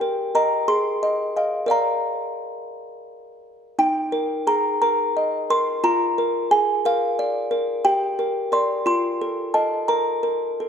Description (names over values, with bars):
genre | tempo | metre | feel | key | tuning
classical, lullaby for music box | 59 BPM (dotted quarters) | 6/8 | straight | unclear | A4 = 439 Hz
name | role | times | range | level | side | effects
music box | solo | 0.0-10.7 s | Eb4 to C6 | -20 LUFS | equal | none
room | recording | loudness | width
moderate recital hall reverb, RT60 1.9 s | dark, warm production | -19 LUFS | side -7 dB against mid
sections
0.0-10.7 A section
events
none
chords
0.0 Eb/G; 0.7 Fm7/Ab; 1.7 Bb; 3.8 Eb; 5.8 Bb7/F; 7.8 Gm; 8.8 F7; 9.9 N.C.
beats
0.68 | 1.71 2.75 | 3.79 4.81 | 5.83 6.83 | 7.83 8.85 | 9.89